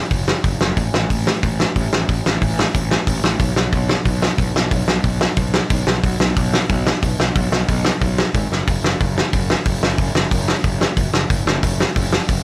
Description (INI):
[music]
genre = punk rock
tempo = 182 BPM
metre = 4/4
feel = straight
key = unclear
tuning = A4 = 440 Hz
[part]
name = fuzz picked electric bass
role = bass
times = 0.1-12.4 s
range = F#1 to B1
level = -20 LUFS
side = equal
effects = overdrive
[part]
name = loose indie drum kit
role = drums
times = 0.1-12.4 s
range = hi-hat, kick drum, snare drum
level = -17 LUFS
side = equal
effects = none
[sound]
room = little or no reverb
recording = none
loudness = -15 LUFS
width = side -28 dB against mid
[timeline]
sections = 0.0-12.4 A section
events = drum fill 8.5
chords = none